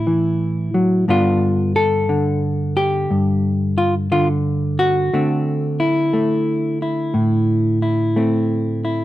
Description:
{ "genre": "solo jazz", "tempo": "59 BPM", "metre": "4/4", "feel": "swing 67% on 8ths", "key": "D major", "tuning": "A4 = 440 Hz", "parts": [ { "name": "hollow-body jazz guitar", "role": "solo", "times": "0.0-9.0 s", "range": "G2 to A4", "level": "-16 LUFS", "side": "equal", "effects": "none" } ], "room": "light reverb", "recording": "close, detailed microphones", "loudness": "-16 LUFS", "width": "side -14 dB against mid", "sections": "0.0-9.0 A section", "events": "none", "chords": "0.0 D9 (rootless); 1.1 Gadd9; 5.1 Dsus2" }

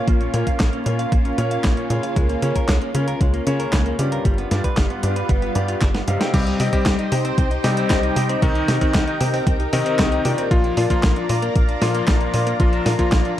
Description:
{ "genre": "italo disco", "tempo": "115 BPM", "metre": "4/4", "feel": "straight", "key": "C minor from 6.3 s", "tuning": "A4 = 440 Hz", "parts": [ { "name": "lush unison pad", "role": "sustained chords", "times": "0.0-13.4 s", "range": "G3 to Bb5", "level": "-26 LUFS", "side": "equal", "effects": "chorus, phaser" }, { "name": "direct-recorded clean electric guitar", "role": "arpeggios", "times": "0.0-13.4 s", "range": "G3 to F5", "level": "-29 LUFS", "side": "right 2 dB", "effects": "digital delay" }, { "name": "clear baby grand piano", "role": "stabs", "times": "0.0-13.0 s", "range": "G2 to F5", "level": "-27 LUFS", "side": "left 3 dB", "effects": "none" }, { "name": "tight sequencer bass", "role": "bass", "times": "0.1-13.2 s", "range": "G1 to Db3", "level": "-23 LUFS", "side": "equal", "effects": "none" }, { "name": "clean 12-bit digital drum machine", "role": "drums", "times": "0.1-13.4 s", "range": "crash cymbal, handclaps, hi-hat, snare drum", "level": "-25 LUFS", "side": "equal", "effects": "overdrive, small room ambience" }, { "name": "electronic kick drum", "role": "drums", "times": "0.1-13.2 s", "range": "none", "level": "-19 LUFS", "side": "equal", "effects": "overdrive, small room ambience" }, { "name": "bright electric grand piano", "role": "melody", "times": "6.3-13.3 s", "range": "Eb3 to G4", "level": "-24 LUFS", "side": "left 2 dB", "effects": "digital delay" } ], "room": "light reverb", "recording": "dark, warm production, vinyl crackle", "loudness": "-17 LUFS", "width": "side -12 dB against mid", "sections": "0.0-6.3 A section; 6.3-13.4 B section", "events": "drum fill 5.8-6.3", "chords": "0.0 Bbm; 2.2 Db6; 4.3 G7; 6.3 Cm; 10.5 Bb" }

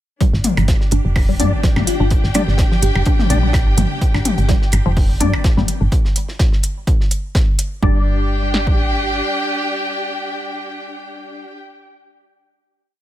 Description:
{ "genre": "minimal techno", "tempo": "126 BPM", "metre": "4/4", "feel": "swing 55% on 16ths", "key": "unclear", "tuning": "A4 = 440 Hz", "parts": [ { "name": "hollow square pluck", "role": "riff", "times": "0.2-8.0 s", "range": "F3 to D4", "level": "-26 LUFS", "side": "right 1 dB", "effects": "chorus, phaser, sidechain pumping, ping-pong delay" }, { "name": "cloth-damped thuddy drum kit", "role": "drums", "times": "0.2-7.7 s", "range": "hi-hat, snare drum", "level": "-29 LUFS", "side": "right 1 dB", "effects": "high-pass filter on hats, small room ambience, high-pass filter on snare, high-pass filter on room" }, { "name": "punchy analog drum machine", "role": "drums", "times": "0.2-8.8 s", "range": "kick drum, snare drum", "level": "-16 LUFS", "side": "equal", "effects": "small room ambience" }, { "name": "rich chamber string section", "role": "texture", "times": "0.2-11.6 s", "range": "D4 to G5", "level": "-24 LUFS", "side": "equal", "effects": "sidechain pumping" }, { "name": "woody FM bass", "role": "bass", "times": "0.3-9.2 s", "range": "F1 to G2", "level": "-18 LUFS", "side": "equal", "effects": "sidechain pumping" }, { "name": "electronic hi-hat", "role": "drums", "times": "0.4-7.7 s", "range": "none", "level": "-22 LUFS", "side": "equal", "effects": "small room ambience" }, { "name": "electronic toms and percussion blips", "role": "percussion", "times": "0.4-5.7 s", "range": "none", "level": "-22 LUFS", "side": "left 4 dB", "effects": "small room ambience, digital delay" }, { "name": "percussive organ stab", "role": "stabs", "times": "1.4-11.5 s", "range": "G3 to D5", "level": "-26 LUFS", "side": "left 3 dB", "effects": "ensemble chorus, digital delay" }, { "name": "bell-like FM electric piano", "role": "melody", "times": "1.9-3.0 s", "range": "F4 to G4", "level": "-25 LUFS", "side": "left 2 dB", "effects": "chorus, phaser, digital delay" } ], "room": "little or no reverb", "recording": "none", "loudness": "-14 LUFS", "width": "side -13 dB against mid", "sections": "0.2-7.8 groove; 7.8-11.6 final chord", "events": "none", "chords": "0.2 G5" }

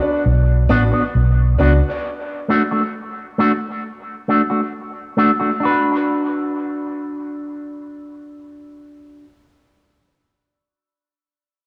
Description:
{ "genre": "reggae", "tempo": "67 BPM", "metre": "4/4", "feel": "straight", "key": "B minor", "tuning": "A4 = 439 Hz", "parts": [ { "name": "clear grand piano", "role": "stabs", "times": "0.0-1.8 s", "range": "D4 to D5", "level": "-26 LUFS", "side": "equal", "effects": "dub echo" }, { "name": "vintage muted fingered electric bass", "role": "bass", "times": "0.3-1.8 s", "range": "A1 to C#2", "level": "-16 LUFS", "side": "equal", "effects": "none" }, { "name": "electric guitar with an envelope filter", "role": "accompaniment", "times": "0.7-9.3 s", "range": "A3 to B4", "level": "-22 LUFS", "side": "equal", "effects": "dub echo" } ], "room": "moderate echo chamber reverb, RT60 2.4 s", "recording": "echo-heavy mix", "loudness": "-18 LUFS", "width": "mono", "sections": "0.0-5.6 A section; 5.6-9.2 B section", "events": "none", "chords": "0.0 Bm; 2.0 D; 5.6 Bm" }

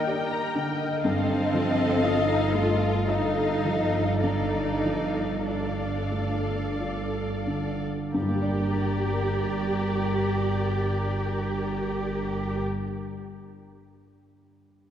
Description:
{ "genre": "cinematic, emotional film score for orchestra", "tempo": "42-62 BPM", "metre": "3/4", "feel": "rubato", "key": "G minor", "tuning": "A4 = 441 Hz", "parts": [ { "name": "dark symphonic violin section", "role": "melody", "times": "0.0-12.6 s", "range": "D5 to G5", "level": "-36 LUFS", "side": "left 4 dB", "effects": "none" }, { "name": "warm symphonic violin section", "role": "second line", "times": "0.0-12.6 s", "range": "Bb4 to Bb5", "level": "-34 LUFS", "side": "left 4 dB", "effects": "none" }, { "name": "felt-muted upright piano", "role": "accompaniment", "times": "0.0-14.9 s", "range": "G2 to G5", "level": "-31 LUFS", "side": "left 1 dB", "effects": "none" }, { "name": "rich symphonic viola section", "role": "accompaniment", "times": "0.0-12.6 s", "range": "G4 to Bb4", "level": "-33 LUFS", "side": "left 1 dB", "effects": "none" }, { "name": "warm symphonic cello section", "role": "bass", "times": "0.0-12.6 s", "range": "C4 to G4", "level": "-30 LUFS", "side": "right 1 dB", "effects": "none" }, { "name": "rich symphonic double bass section", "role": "bass", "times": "1.0-12.6 s", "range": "G1", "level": "-29 LUFS", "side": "right 1 dB", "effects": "none" } ], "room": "wet church reverb, RT60 2.8 s", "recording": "none", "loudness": "-24 LUFS", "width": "side -10 dB against mid", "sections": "0.0-8.1 A section; 8.1-12.2 B section", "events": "slowing down 0.0-8.1", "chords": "0.0 Ebmaj7/G; 1.0 F7/G; 4.2 Dm/G; 8.1 Gm" }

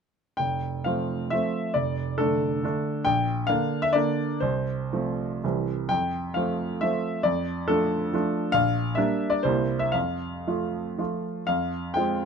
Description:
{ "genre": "classical, romantic triple-time dance for piano with dotted rhythms", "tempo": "112-149 BPM", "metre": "3/4", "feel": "rubato", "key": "F major", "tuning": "A4 = 440 Hz", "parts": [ { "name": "clear baby grand piano", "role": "solo", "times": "0.4-12.3 s", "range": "F1 to G5", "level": "-24 LUFS", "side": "equal", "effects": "none" } ], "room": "light reverb", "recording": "close, detailed microphones", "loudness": "-24 LUFS", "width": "side -6 dB against mid", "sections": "0.4-11.5 A section", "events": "none", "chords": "0.4 F; 1.8 Dm/F; 3.1 Gm/Bb; 4.4 F/C; 5.4 C; 5.9 F; 7.2 Dm/F; 8.5 Gm/Bb; 9.4 C7; 9.9 F; 11.5 Fm" }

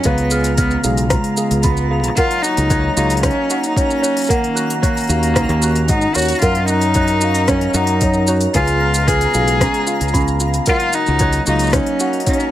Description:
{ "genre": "folktronica", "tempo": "113 BPM", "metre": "4/4", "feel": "straight", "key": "F# major", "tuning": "A4 = 441 Hz", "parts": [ { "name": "warm cello", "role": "melody", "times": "0.0-12.5 s", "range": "G#3 to G#4", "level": "-19 LUFS", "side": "equal", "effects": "tape echo" }, { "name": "celesta", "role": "second line", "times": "0.0-12.5 s", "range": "C#5 to F#6", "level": "-24 LUFS", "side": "equal", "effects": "tape echo" }, { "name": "warm analog pad", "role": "sustained chords", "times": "0.0-12.5 s", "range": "C#3 to A#4", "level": "-25 LUFS", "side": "left 1 dB", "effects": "chorus" }, { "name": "ukulele", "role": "arpeggios", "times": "0.0-12.5 s", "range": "C#4 to C#5", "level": "-24 LUFS", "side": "right 1 dB", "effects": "none" }, { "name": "organic electronic drum kit", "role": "drums", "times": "0.0-12.5 s", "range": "hi-hat, rim click, shaker", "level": "-23 LUFS", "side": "left 1 dB", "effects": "overdrive, small room ambience" }, { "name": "twinkling granular texture", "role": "texture", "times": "0.0-12.5 s", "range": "A#5", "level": "-29 LUFS", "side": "equal", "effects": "built-in reverb" }, { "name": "fingered electric bass", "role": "bass", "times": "0.1-11.8 s", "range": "B1 to G#2", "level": "-18 LUFS", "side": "equal", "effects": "none" }, { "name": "electronic kick drum", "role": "drums", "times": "0.1-12.4 s", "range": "none", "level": "-20 LUFS", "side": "equal", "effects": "overdrive, small room ambience" } ], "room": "light reverb", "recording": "none", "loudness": "-14 LUFS", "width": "side -13 dB against mid", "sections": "0.0-12.5 A section", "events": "none", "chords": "0.1 C#7; 2.2 F#6/C#; 4.3 D#m7; 6.4 F#6; 8.5 C#7; 10.7 F#6/C#" }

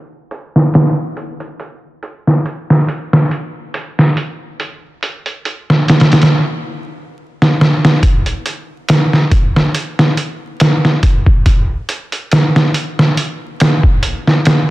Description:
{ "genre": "trip hop", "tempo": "70 BPM", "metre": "4/4", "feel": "swing 55% on 16ths", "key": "none", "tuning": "none", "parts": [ { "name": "trip hop sampler-style drum kit", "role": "drums", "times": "0.3-14.7 s", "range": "hi-hat, kick drum, snare drum", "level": "-11 LUFS", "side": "equal", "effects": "vintage 12-bit sampler grit, small room reverb" } ], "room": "light reverb", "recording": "dense, heavily limited modern master, vinyl crackle, low-pass filter", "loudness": "-11 LUFS", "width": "side -17 dB against mid", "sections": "0.0-8.0 A section; 8.0-14.7 B section", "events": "filter sweep 0.0-8.0; drum fill 7.4-8.0", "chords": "none" }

